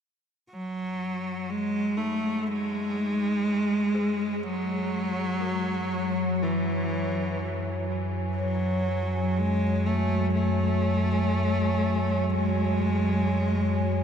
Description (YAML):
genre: ambient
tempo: 61 BPM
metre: 4/4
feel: straight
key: F# minor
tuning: A4 = 440 Hz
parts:
  - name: rich cello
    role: melody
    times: 0.5-14.0 s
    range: E3 to A3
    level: -27 LUFS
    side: equal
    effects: ping-pong delay
  - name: dark analog pad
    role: sustained chords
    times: 0.5-14.0 s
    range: F#4 to G#5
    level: -34 LUFS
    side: right 1 dB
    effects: lush chorus
  - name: deep rumbling drone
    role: drone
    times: 0.9-14.0 s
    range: F#2 to F#3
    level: -29 LUFS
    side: equal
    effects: built-in reverb
  - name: dark detuned synth bell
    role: arpeggios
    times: 2.0-14.0 s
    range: D#4 to G#4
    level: -43 LUFS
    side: left 1 dB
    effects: none
room: wet huge ambient reverb, RT60 8.2 s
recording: dark, warm production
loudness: -24 LUFS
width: side -8 dB against mid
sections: 0.5-14.0 A section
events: fade-in on analog synth pad 0.5-14.0; filter sweep on synth drone 0.5-14.0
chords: 0.5 F#m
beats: | 0.50 1.48 2.46 3.45 | 4.43 5.42 6.40 7.38 | 8.37 9.35 10.33 11.32 | 12.30 13.28